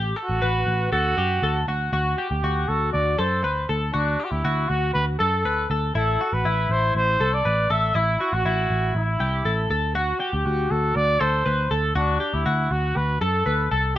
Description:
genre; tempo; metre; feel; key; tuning
jangly indie pop; 120 BPM; 4/4; straight; unclear; A4 = 440 Hz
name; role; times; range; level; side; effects
twelve-string electric guitar; arpeggios; 0.0-14.0 s; E4 to B4; -26 LUFS; left 2 dB; lush chorus
vintage muted picked electric bass; bass; 0.0-14.0 s; A1 to F#2; -24 LUFS; equal; none
breathy trumpet; melody; 0.2-14.0 s; D4 to E5; -24 LUFS; right 1 dB; none
room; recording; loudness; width
light reverb; rough home demo mix; -20 LUFS; side -13 dB against mid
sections
0.0-1.9 A section; 1.9-14.0 B section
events
none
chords
0.0 Gmaj9/A; 0.9 D; 6.0 A5; 9.7 D

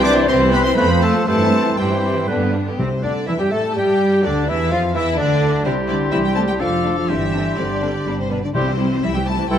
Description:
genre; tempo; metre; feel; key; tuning
quick classical-period movement for symphony orchestra; 124 BPM; 3/4; rubato; C major; A4 = 439 Hz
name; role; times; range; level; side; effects
clear studio violin section; melody; 0.0-9.6 s; B4 to D6; -27 LUFS; left 2 dB; none
clear oboe; second line; 0.0-9.6 s; C4 to C5; -27 LUFS; right 1 dB; none
mellow clarinet; second line; 0.0-9.6 s; C4 to D5; -26 LUFS; left 2 dB; none
rich chamber violin section; second line; 0.0-9.6 s; A3 to C5; -27 LUFS; left 4 dB; none
small flute group; second line; 0.0-9.6 s; G4 to D6; -27 LUFS; left 5 dB; none
clear symphonic viola section; accompaniment; 0.0-9.6 s; C3 to C4; -26 LUFS; right 2 dB; none
mellow bassoon; accompaniment; 0.0-9.6 s; C3 to A3; -25 LUFS; right 1 dB; none
warm French horn section; sustained chords; 0.0-9.6 s; D3 to A4; -24 LUFS; left 2 dB; none
rich chamber cello section; bass; 0.0-9.6 s; B2 to D4; -24 LUFS; right 2 dB; none
rich symphonic double bass section; bass; 0.0-9.6 s; F1 to A2; -24 LUFS; right 3 dB; none
timpani; percussion; 2.8-3.5, 8.5-9.2 s; C3; -26 LUFS; left 1 dB; none
room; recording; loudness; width
moderate scoring stage reverb, RT60 1.6 s; none; -16 LUFS; side -9 dB against mid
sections
0.0-2.8 A section; 2.8-9.6 B section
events
none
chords
0.0 C; 0.8 F; 1.3 C/G; 2.3 G; 2.8 C; 3.8 N.C.; 4.2 Dm; 5.2 N.C.; 5.7 C; 6.6 Dm/F; 7.1 Gsus4; 8.1 G; 8.6 C

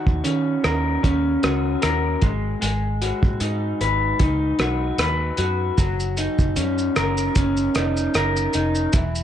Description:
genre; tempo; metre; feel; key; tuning
indie pop, bedroom pop; 76 BPM; 4/4; swing 55% on 16ths; Eb minor; A4 = 440 Hz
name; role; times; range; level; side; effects
electric guitar through a small old amp; accompaniment; 0.0-9.2 s; Eb3 to Cb5; -22 LUFS; left 1 dB; wide subtle chorus, warbly pitch drift
vintage muted fingered electric bass; bass; 0.1-9.2 s; E1 to Eb3; -25 LUFS; right 1 dB; none
cloth-damped thuddy drum kit; drums; 0.1-9.2 s; hi-hat, kick drum, rim click, shaker; -23 LUFS; right 1 dB; vintage 12-bit sampler grit
room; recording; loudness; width
small room ambience; none; -19 LUFS; side -10 dB against mid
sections
0.0-9.2 A section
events
none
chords
0.0 Ebm7; 2.2 Abm7; 5.8 Ebm7/Gb

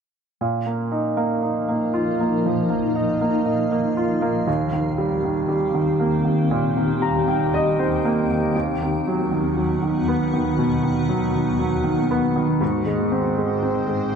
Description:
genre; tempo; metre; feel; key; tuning
pop; 59 BPM; 4/4; straight; unclear; A4 = 437 Hz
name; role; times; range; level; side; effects
clear baby grand piano; accompaniment; 0.4-14.2 s; Eb2 to Bb5; -20 LUFS; right 1 dB; none
granular cloud pad; sustained chords; 1.0-14.2 s; Eb2 to G5; -25 LUFS; left 2 dB; built-in reverb
room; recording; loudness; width
moderate lush hall reverb, RT60 3.0 s; none; -19 LUFS; side -6 dB against mid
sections
0.4-14.2 A section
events
grand piano fill 6.5-8.5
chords
0.4 Bbsus4; 4.5 Eb6; 8.5 B/D#; 12.6 Ab

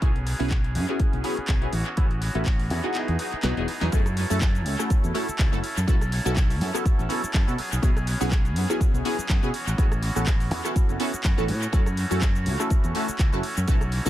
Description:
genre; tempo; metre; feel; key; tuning
filtered disco house; 123 BPM; 4/4; swing 55% on 16ths; F# dorian; A4 = 440 Hz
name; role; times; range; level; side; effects
funky polysynth comp; accompaniment; 0.0-14.1 s; A3 to B4; -29 LUFS; equal; chorus, phaser, sidechain pumping, low-pass filter, dub echo
electric guitar with an envelope filter; riff; 0.0-14.1 s; E3 to A4; -33 LUFS; right 1 dB; sidechain pumping, low-pass filter, dub echo
fingered electric bass; bass; 0.0-14.1 s; E1 to B2; -27 LUFS; equal; sidechain pumping, low-pass filter
electronic kick drum; drums; 0.0-13.8 s; none; -22 LUFS; equal; none
punchy analog drum machine; drums; 0.0-14.1 s; handclaps, hi-hat, rim click, shaker, snare drum; -33 LUFS; equal; sidechain pumping on hats, sidechain pumping on perc, dub echo
room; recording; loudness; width
little or no reverb; echo-heavy mix; -22 LUFS; side -14 dB against mid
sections
0.0-3.9 A section; 3.9-14.1 B section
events
kick drops out 3.0-3.9; drum fill 3.4-3.9; band accent 3.8; drop 3.9-14.1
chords
0.0 E69/B; 1.7 A69; 3.0 Emaj9; 3.9 F#m7; 5.9 B9sus4; 7.6 E69/B; 9.5 A69; 11.7 F#m7

